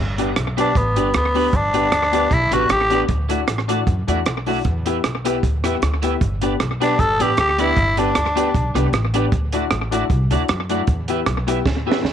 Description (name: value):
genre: ska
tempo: 154 BPM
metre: 4/4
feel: swing 54% on 8ths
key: G major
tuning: A4 = 440 Hz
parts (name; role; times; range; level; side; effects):
- upright bass; bass; 0.0-12.1 s; G1 to F#2; -23 LUFS; equal; none
- clean electric guitar; accompaniment; 0.2-12.0 s; A3 to E5; -26 LUFS; right 13 dB; harmonic tremolo
- warm upright piano; stabs; 0.2-12.1 s; B3 to G4; -24 LUFS; left 14 dB; none
- compact cocktail drum kit; drums; 0.2-12.1 s; hi-hat, kick drum, rim click, snare drum; -22 LUFS; right 3 dB; slapback echo
- growling tenor saxophone; melody; 0.6-3.0, 6.8-8.8 s; B3 to A4; -18 LUFS; equal; none
room: light reverb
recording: 1960s-style stereo with parts hard left and right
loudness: -16 LUFS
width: side -9 dB against mid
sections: 0.0-12.1 A section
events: drum fill 11.7-12.1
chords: 0.0 G; 3.1 Dadd9; 4.6 Em; 6.2 G; 9.3 Dadd9; 10.9 Em